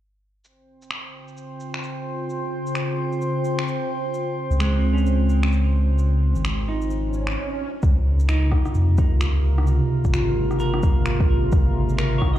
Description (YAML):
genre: future garage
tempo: 130 BPM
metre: 4/4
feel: swing 61% on 16ths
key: unclear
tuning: A4 = 443 Hz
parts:
  - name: warbly tape-like pad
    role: sustained chords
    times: 1.4-12.4 s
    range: C3 to C5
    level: -27 LUFS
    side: right 1 dB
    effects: chorus, built-in reverb, phaser, sidechain pumping
  - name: electronic shaker, finger snaps and rim click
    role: drums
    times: 0.4-12.4 s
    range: none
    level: -32 LUFS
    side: left 1 dB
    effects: overdrive, low-pass filter on perc, low-pass filter on snare, low-pass filter on room
  - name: drifting glass-harmonics texture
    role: texture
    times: 1.0-12.4 s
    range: Bb3 to C5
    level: -32 LUFS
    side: equal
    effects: chorus, built-in reverb
  - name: dark detuned saw bass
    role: bass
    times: 4.5-12.4 s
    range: Ab1 to F2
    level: -20 LUFS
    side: equal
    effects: tube saturation, sidechain pumping
  - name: semi-hollow electric guitar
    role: accompaniment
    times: 4.6-12.4 s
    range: Ab3 to Eb5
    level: -29 LUFS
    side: right 2 dB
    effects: sidechain pumping, tape echo
  - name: swell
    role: sound effects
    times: 7.1-7.8 s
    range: none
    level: -33 LUFS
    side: right 3 dB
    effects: none
  - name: electronic kick drum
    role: drums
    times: 7.8-12.3 s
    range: none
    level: -19 LUFS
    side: equal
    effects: overdrive
room: little or no reverb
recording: played on a big sound system in a bare room, cassette tape, large studio reverb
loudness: -19 LUFS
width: side -12 dB against mid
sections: 0.4-7.8 A section; 7.8-12.4 B section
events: filter sweep on ambient pad 0.4-7.8; swell 7.1-7.8; break 7.4-7.8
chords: 0.4 Dbmaj7